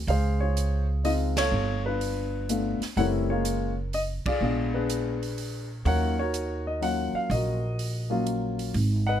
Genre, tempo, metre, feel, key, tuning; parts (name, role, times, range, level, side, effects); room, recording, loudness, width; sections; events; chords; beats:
jazz piano trio; 125 BPM; 3/4; swing 68% on 8ths; Eb minor; A4 = 440 Hz
upright bass; bass; 0.0-9.2 s; Gb1 to Eb2; -28 LUFS; right 1 dB
warm concert grand piano; melody; 0.1-9.2 s; Gb3 to Gb5; -28 LUFS; left 2 dB
swinging big-band drum kit; drums; 0.1-8.9 s; hi-hat, kick drum, ride cymbal, snare drum; -36 LUFS; right 3 dB
light reverb; -25 LUFS; side -10 dB against mid
0.0-8.7 A section
band accent 1.3, 4.2
0.1 Dbmaj7; 1.5 G9; 3.0 Gbmaj7; 4.4 Bb7b9; 5.9 Ebm7
| 0.07 0.56 1.04 | 1.52 2.00 2.48 | 2.96 3.45 3.93 | 4.41 4.89 5.37 | 5.86 6.34 6.82 | 7.30 7.78 8.26 | 8.74